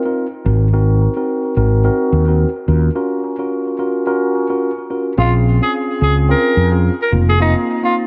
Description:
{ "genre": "afrobeats", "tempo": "108 BPM", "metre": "4/4", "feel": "swing 55% on 16ths", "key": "Bb minor", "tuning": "A4 = 444 Hz", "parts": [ { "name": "mellow tine electric piano", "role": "accompaniment", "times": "0.1-8.1 s", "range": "Bb3 to Bb4", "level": "-20 LUFS", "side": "equal", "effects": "subtle chorus, tape echo" }, { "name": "mellow fretless electric bass", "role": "bass", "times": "0.5-7.5 s", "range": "F1 to F2", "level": "-16 LUFS", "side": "equal", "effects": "none" }, { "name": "growling alto saxophone", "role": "melody", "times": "5.2-7.9 s", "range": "Eb4 to Bb4", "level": "-20 LUFS", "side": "equal", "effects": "tape echo" } ], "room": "moderate spring reverb, RT60 2.8 s", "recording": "echo-heavy mix", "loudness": "-16 LUFS", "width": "mono", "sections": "0.0-5.2 A section; 5.2-8.1 B section", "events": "break 3.0-5.2", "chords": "0.5 Ab7; 2.7 Ebm7 (rootless); 5.2 Bbm7; 7.1 F7sus4" }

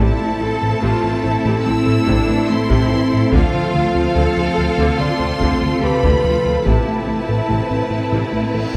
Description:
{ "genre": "cinematic, hybrid orchestral and electronic film score", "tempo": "72 BPM", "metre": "4/4", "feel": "straight", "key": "A minor", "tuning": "A4 = 439 Hz", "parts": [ { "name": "clear studio violin section", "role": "melody", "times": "0.0-8.8 s", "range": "F5 to E6", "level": "-28 LUFS", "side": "equal", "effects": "none" }, { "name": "clear symphonic violin section", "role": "second line", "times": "0.0-8.8 s", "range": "E4 to B4", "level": "-27 LUFS", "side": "equal", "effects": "none" }, { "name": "rich studio viola section", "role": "accompaniment", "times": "0.0-8.8 s", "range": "C3 to C4", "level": "-28 LUFS", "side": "equal", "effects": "none" }, { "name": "dark French horn section", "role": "sustained chords", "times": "0.0-8.8 s", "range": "F3 to B4", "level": "-25 LUFS", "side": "equal", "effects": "none" }, { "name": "granular cloud pad", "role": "sustained chords", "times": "0.0-8.8 s", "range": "C3 to E5", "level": "-29 LUFS", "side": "equal", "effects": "none" }, { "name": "thumb-piano-like synth pluck", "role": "arpeggios", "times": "0.0-8.8 s", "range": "D3 to A4", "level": "-30 LUFS", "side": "equal", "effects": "none" }, { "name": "round analog bass", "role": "riff", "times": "0.0-8.7 s", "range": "D2 to A3", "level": "-24 LUFS", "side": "equal", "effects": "none" }, { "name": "rich symphonic cello section", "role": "bass", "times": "0.0-8.8 s", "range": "C4 to A4", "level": "-27 LUFS", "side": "equal", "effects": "none" }, { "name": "rich symphonic double bass section", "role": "bass", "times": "0.0-8.8 s", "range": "A1 to D2", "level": "-26 LUFS", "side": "equal", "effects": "none" }, { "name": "taiko ensemble", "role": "drums", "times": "0.0-8.8 s", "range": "none", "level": "-24 LUFS", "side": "equal", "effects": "none" }, { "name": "warm concert grand piano", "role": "texture", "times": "0.0-8.8 s", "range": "A3 to D5", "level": "-37 LUFS", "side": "equal", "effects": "none" }, { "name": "cymbal swell", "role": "sound effects", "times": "8.4-8.8 s", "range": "none", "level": "-39 LUFS", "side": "equal", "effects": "none" } ], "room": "wet scoring stage reverb, RT60 1.7 s", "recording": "none", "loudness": "-17 LUFS", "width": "mono", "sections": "0.0-8.8 A section", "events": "none", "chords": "0.0 Am; 3.3 Dm7; 6.7 Amadd9" }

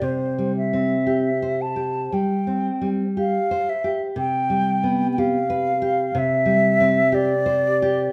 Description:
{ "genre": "romantic duo for flute and classical guitar", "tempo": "56-62 BPM", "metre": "4/4", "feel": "rubato", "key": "C major", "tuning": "A4 = 440 Hz", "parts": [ { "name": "mellow silver concert flute", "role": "melody", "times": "0.0-8.1 s", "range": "C5 to A5", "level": "-24 LUFS", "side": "equal", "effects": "none" }, { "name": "nylon-string guitar", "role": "accompaniment", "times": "0.0-8.1 s", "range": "C3 to C5", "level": "-24 LUFS", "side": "equal", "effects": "none" } ], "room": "moderate recital hall reverb, RT60 1.3 s", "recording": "none", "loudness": "-21 LUFS", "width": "mono", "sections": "0.0-8.1 A section", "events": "none", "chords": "0.0 C; 4.2 G7/C; 6.2 C" }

